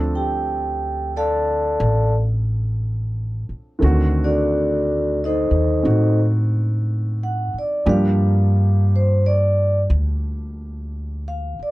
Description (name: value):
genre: jazz ballad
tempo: 59 BPM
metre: 4/4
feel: swing 67% on 8ths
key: unclear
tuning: A4 = 440 Hz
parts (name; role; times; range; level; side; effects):
- warm grand piano; accompaniment; 0.0-11.7 s; D3 to C#5; -25 LUFS; right 1 dB; none
- upright bass; bass; 0.0-11.6 s; A1 to A2; -20 LUFS; equal; none
- vibraphone with medium mallets; melody; 0.2-11.7 s; D4 to A5; -21 LUFS; equal; none
room: little or no reverb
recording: dry, close 1970s-style studio recording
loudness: -17 LUFS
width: side -18 dB against mid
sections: 0.0-11.7 A section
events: vibraphone solo 0.0-11.7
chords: 0.0 Dm7; 3.8 D7b9; 7.9 Gm7